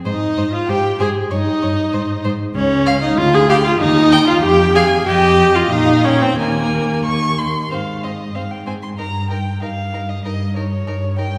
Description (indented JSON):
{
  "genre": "quick classical-period movement for string quartet",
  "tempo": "95 BPM",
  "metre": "2/4",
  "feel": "straight",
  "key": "unclear",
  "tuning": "A4 = 439 Hz",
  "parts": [
    { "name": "dark violin", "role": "melody", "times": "0.1-11.4 s", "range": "Bb4 to C6", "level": "-27 LUFS", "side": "equal", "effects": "none" },
    { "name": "warm violin", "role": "second line", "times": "0.1-11.3 s", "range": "Bb4 to Db6", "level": "-26 LUFS", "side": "equal", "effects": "none" },
    { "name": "warm viola", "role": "accompaniment", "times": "0.1-11.3 s", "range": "Bb3 to Ab4", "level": "-18 LUFS", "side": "equal", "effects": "none" },
    { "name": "warm cello", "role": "bass", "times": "0.1-11.4 s", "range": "Db2 to Bb2", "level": "-22 LUFS", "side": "equal", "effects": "none" }
  ],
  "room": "wet concert hall reverb, RT60 1.9 s",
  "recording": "heard from further back in the room",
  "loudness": "-16 LUFS",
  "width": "mono",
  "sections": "0.0-7.7 A section; 7.7-11.4 B section",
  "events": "none",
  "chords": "0.1 Ab5; 1.3 Eb; 1.9 Ab5; 2.6 Db; 3.2 Ddim; 3.8 Eb; 4.4 Fm; 5.1 Ebadd9/F; 5.7 Bb5; 6.4 Ebsus4; 7.7 Ab; 9.0 Eb/G"
}